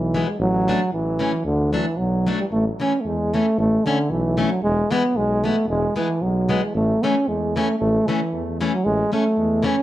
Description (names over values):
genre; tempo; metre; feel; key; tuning
alpine folk, alpine dance band; 114 BPM; 2/4; straight; A major; A4 = 440 Hz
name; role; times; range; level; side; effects
mellow euphonium; melody; 0.0-9.8 s; D3 to C#4; -20 LUFS; right 1 dB; tape echo
mellow tuba; bass; 0.0-9.7 s; E1 to E2; -26 LUFS; left 1 dB; none
picked plugged-in steel-string acoustic guitar; accompaniment; 0.1-9.8 s; E3 to D4; -23 LUFS; left 4 dB; none
room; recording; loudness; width
moderate studio reverb, RT60 0.6 s; cassette tape; -18 LUFS; side -14 dB against mid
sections
0.0-2.5 A section; 2.5-9.8 B section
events
none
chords
0.4 Asus4; 0.9 A; 1.5 D; 2.5 A; 4.6 E; 6.7 A